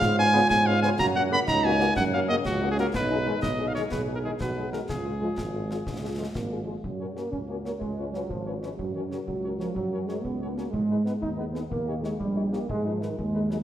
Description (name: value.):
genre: military-style march for wind band.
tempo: 123 BPM (dotted quarters).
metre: 6/8.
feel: straight.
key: F# major.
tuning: A4 = 445 Hz.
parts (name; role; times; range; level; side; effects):
warm cornet; melody; 0.0-13.6 s; F#4 to B5; -27 LUFS; equal; none.
warm euphonium; second line; 0.0-6.6 s; C#4 to G#4; -32 LUFS; right 2 dB; none.
mellow tuba; bass; 0.0-13.6 s; G#1 to G#2; -30 LUFS; right 2 dB; none.
concert snare drum, concert bass drum and clash cymbals; drums; 0.0-13.6 s; none; -38 LUFS; left 1 dB; none.
mellow French horn section; accompaniment; 0.2-13.6 s; G#3 to B4; -34 LUFS; left 5 dB; none.
dark trombone section; sustained chords; 0.3-13.6 s; C#3 to D#4; -31 LUFS; right 1 dB; none.
room: wet recital hall reverb, RT60 1.4 s.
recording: none.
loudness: -24 LUFS.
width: side -11 dB against mid.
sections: 0.0-6.8 A section; 6.8-13.6 B section.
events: none.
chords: 0.0 C#7/G#; 1.0 F#; 2.9 G#m/B; 4.9 C#; 6.8 F#; 7.8 C#7; 8.8 F#; 10.7 G#m; 11.7 D#7; 12.7 G#m.